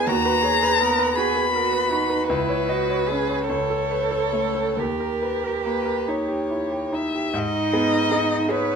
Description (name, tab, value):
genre	classical, slow romantic movement for piano trio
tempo	45-56 BPM (dotted quarters)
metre	6/8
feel	rubato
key	G# minor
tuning	A4 = 442 Hz
part	dark violin	melody	0.0-8.8 s	A#4 to B5	-24 LUFS	left 5 dB	none
part	rich cello	second line	0.0-8.8 s	D#4 to B4	-26 LUFS	right 9 dB	none
part	bright grand piano	accompaniment	0.0-8.8 s	C#2 to D#5	-24 LUFS	right 1 dB	none
room	light reverb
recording	minimal, uncompressed stereo recording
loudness	-20 LUFS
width	side -6 dB against mid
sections	0.0-7.4 A section; 7.4-8.8 B section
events	none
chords	0.1 B/D#; 2.3 C#m11; 3.5 A/C#; 4.8 D#; 7.4 G#m